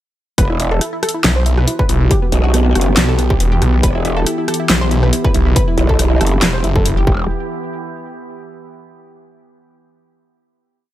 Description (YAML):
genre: heavy wobble dubstep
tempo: 139 BPM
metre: 4/4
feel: swing 54% on 16ths, half-time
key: E minor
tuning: A4 = 441 Hz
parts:
  - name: wide unison pluck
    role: melody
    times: 0.4-7.2 s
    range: B3 to C5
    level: -22 LUFS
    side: equal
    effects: dub echo
  - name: evolving wavetable pad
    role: sustained chords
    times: 1.1-7.3 s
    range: E3 to G4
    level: -23 LUFS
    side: equal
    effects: chorus, built-in reverb, sidechain pumping
  - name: growl bass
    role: bass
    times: 0.4-7.3 s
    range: E1 to B1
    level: -14 LUFS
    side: equal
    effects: chorus, overdrive
  - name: dubstep drum kit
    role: drums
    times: 0.4-6.9 s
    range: handclaps, hi-hat, rim click, snare drum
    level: -18 LUFS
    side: equal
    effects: none
  - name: electronic kick drum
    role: drums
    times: 0.4-7.2 s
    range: none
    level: -16 LUFS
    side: equal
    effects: distortion
  - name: snarling distorted saw bass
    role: bass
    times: 1.2-7.1 s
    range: E1 to B1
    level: -15 LUFS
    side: equal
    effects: distortion, overdrive
room: little or no reverb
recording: none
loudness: -12 LUFS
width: side -13 dB against mid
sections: 0.4-7.3 drop; 7.3-9.0 final hit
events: drop 0.4-7.3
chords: 0.4 Emadd9; 7.3 N.C.